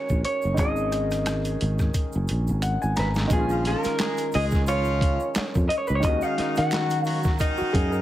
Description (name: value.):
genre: R&B, neo-soul.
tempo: 88 BPM.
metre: 4/4.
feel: swing 56% on 16ths.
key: unclear.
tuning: A4 = 439 Hz.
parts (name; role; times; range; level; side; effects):
electric guitar through a small old amp; melody; 0.0-7.2 s; Ab4 to Gb5; -28 LUFS; equal; none.
warm grand piano; accompaniment; 0.0-8.0 s; Eb3 to Bb5; -30 LUFS; equal; none.
sustaining fretless electric bass; bass; 0.1-8.0 s; Gb1 to Eb3; -25 LUFS; equal; none.
boom bap sampler-style drum kit; drums; 0.1-7.9 s; handclaps, hi-hat, kick drum, rim click, snare drum; -26 LUFS; equal; none.
egg shaker and finger snaps; percussion; 0.1-8.0 s; none; -41 LUFS; right 6 dB; none.
bright saxophone section; stabs; 3.5-8.0 s; Eb3 to Ab4; -30 LUFS; equal; none.
room: studio reverb.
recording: heavily compressed radio sound.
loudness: -22 LUFS.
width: side -13 dB against mid.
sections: 0.0-3.3 A section; 3.3-8.0 B section.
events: drum fill 1.9-3.3; grand piano fill 2.3-3.3.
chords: 0.0 Ab9sus4; 3.3 Bbm7; 6.0 Ebm7.